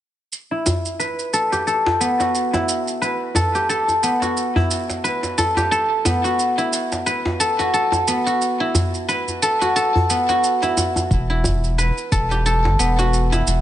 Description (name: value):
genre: organic downtempo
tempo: 89 BPM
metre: 4/4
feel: swing 56% on 16ths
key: E minor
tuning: A4 = 440 Hz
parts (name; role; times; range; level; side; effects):
- shaker; drums; 0.3-13.6 s; none; -26 LUFS; right 4 dB; overdrive
- guzheng; arpeggios; 0.5-13.6 s; B3 to B4; -19 LUFS; equal; low-pass filter, digital delay
- djembe; percussion; 0.7-13.4 s; none; -24 LUFS; equal; none
- warm sub bass; bass; 11.1-13.6 s; E1 to G1; -19 LUFS; equal; none
- electronic kick drum; drums; 11.1-12.3 s; none; -22 LUFS; equal; overdrive
room: light reverb, digital ambience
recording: nothing above 10.3 kHz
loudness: -17 LUFS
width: side -12 dB against mid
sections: 0.3-13.6 A section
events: none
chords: 0.3 Emadd9